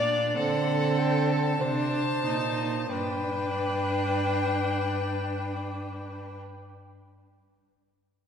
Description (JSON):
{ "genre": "classical, baroque-style fugue for string quartet", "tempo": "45-50 BPM", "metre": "4/4", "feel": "straight", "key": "unclear", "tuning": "A4 = 441 Hz", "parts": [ { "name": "rich violin", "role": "melody", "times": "0.0-6.4 s", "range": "F5 to A5", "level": "-33 LUFS", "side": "left 3 dB", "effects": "none" }, { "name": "rich violin", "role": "second line", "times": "0.0-6.4 s", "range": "A4 to D5", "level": "-30 LUFS", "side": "left 2 dB", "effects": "none" }, { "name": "rich viola", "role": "accompaniment", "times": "0.0-6.4 s", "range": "C4 to Eb4", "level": "-31 LUFS", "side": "right 3 dB", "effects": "none" }, { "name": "dark cello", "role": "bass", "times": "0.0-6.4 s", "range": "G2 to D3", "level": "-31 LUFS", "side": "right 1 dB", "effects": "none" } ], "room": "wet concert hall reverb, RT60 2.4 s", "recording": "heard from further back in the room", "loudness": "-25 LUFS", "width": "side -7 dB against mid", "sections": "0.0-2.9 A section; 2.9-8.3 B section", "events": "slowing down 0.0-2.9", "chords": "0.4 D7; 2.9 G" }